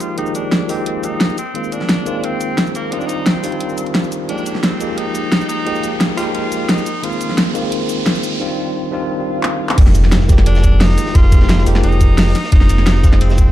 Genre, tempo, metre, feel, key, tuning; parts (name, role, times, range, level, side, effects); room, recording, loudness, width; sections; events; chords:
liquid drum and bass; 175 BPM; 4/4; straight; F dorian; A4 = 436 Hz
edgy tenor saxophone; melody; 0.0-7.4, 10.5-13.5 s; Bb3 to F4; -24 LUFS; equal; low-pass filter, ping-pong delay
bell-like tine electric piano; accompaniment; 0.0-13.5 s; Eb3 to G4; -20 LUFS; equal; fast stereo tremolo, ping-pong delay
pop drum kit; drums; 0.0-13.4 s; crash cymbal, handclaps, hi-hat, shaker, snare drum; -18 LUFS; equal
riser, swell and impact; sound effects; 2.5-11.2 s; -27 LUFS; equal
sub bass with octave; bass; 0.2-13.5 s; F1; -13 LUFS; equal; high-pass filter
crunchy breakbeat drum kit; drums; 9.8-13.5 s; hi-hat, ride cymbal, snare drum; -28 LUFS; equal; high-pass filter on cymbals, low-pass filter on cymbals, high-pass filter on hats, low-pass filter on hats, high-pass filter on snare, low-pass filter on snare, high-pass filter on room, low-pass filter on room
electronic kick drum; drums; 9.8-13.5 s; -11 LUFS; equal
light reverb, small room ambience; dark, warm production; -13 LUFS; side -14 dB against mid
0.0-9.8 A section; 9.8-13.5 B section
build-up 0.0-9.8; riser 2.5-8.4; swell 9.2-9.8; drum fill 9.4-9.8; drop 9.8-13.5; impact 9.8-11.2
0.0 Fm11; 1.4 Bb9sus4/F; 2.9 Ebmaj13; 4.3 Fm11; 6.9 Bb9sus4/F; 8.4 Ebmaj13; 9.8 Fm11; 12.4 Bb9sus4/F